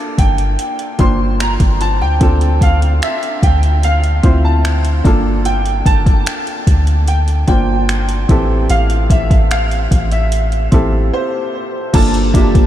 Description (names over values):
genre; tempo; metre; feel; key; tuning
contemporary R&B; 74 BPM; 4/4; straight; G dorian; A4 = 439 Hz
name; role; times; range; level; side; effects
warm baby grand piano; accompaniment; 0.0-12.7 s; E3 to C5; -20 LUFS; equal; none
clear grand piano; melody; 0.2-12.7 s; C5 to C6; -20 LUFS; right 1 dB; analog chorus, diffuse ambient delay
soft 808-style bass; bass; 0.2-12.7 s; G1 to D2; -14 LUFS; equal; none
smooth R&B drum kit; drums; 0.2-12.7 s; crash cymbal, finger snaps, hi-hat, kick drum; -15 LUFS; equal; none
glassy synth bell; texture; 12.3-12.7 s; E5; -31 LUFS; left 3 dB; none
room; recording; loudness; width
light reverb, digital ambience; none; -11 LUFS; side -12 dB against mid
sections
0.0-11.9 A section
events
break 11.1-11.9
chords
0.0 Gm7; 2.2 Dm9; 5.0 Gm7; 8.3 Am7; 11.9 Gm7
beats
0.59 1.40 | 2.21 3.02 3.83 4.64 | 5.45 6.26 7.07 7.88 | 8.70 9.51 10.32 11.13 | 11.94